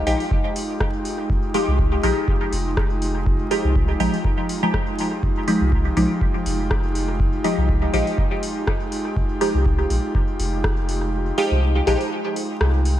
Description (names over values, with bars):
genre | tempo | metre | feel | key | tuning
dub techno | 122 BPM | 4/4 | swing 55% on 16ths | F minor | A4 = 445 Hz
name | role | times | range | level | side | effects
airy breathy pad | sustained chords | 0.0-13.0 s | Ab3 to G4 | -27 LUFS | right 1 dB | chorus, sidechain pumping
filtered dub chord stab | stabs | 0.0-12.1 s | F3 to G4 | -23 LUFS | equal | phaser, vintage 12-bit sampler grit, dub echo
soft dub sub bass | bass | 0.1-13.0 s | F1 to C2 | -22 LUFS | equal | sidechain pumping
booming analog drum machine | drums | 0.1-13.0 s | hi-hat, rim click | -31 LUFS | left 1 dB | dub echo
electronic kick drum | drums | 0.3-10.7 s | none | -22 LUFS | equal | none
room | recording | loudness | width
moderate lush hall reverb, RT60 1.8 s | dreamy mix soaked in reverb, vinyl crackle | -19 LUFS | side -12 dB against mid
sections
0.0-13.0 A section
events
kick drops out 11.1-13.0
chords
0.0 Fm9